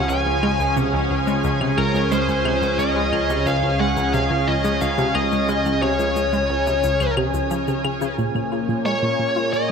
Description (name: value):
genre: ambient, sequencer-driven space music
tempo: 89 BPM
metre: 4/4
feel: straight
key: Db major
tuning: A4 = 435 Hz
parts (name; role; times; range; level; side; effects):
- high-gain lead guitar; melody; 0.0-9.7 s; Bb4 to Ab5; -23 LUFS; left 2 dB; distortion, ping-pong delay
- lush unison pad; sustained chords; 0.0-9.7 s; A#2 to Ab5; -23 LUFS; right 1 dB; chorus
- analog drone; bass; 0.0-8.1 s; Db2; -27 LUFS; equal; chorus
- bubbling stepped-filter texture; texture; 0.0-8.2 s; F3 to F6; -32 LUFS; right 1 dB; chorus, built-in reverb
- analog pluck; riff; 0.1-9.6 s; Db2 to E#4; -25 LUFS; equal; chorus, ping-pong delay
- shaker and claves; percussion; 0.1-9.7 s; none; -33 LUFS; left 6 dB; overdrive, ping-pong delay
room: wet plate reverb, RT60 2.4 s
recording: cassette tape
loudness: -18 LUFS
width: side -6 dB against mid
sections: 0.0-8.2 A section; 8.2-9.7 B section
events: none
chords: 0.0 Db; 8.2 A#m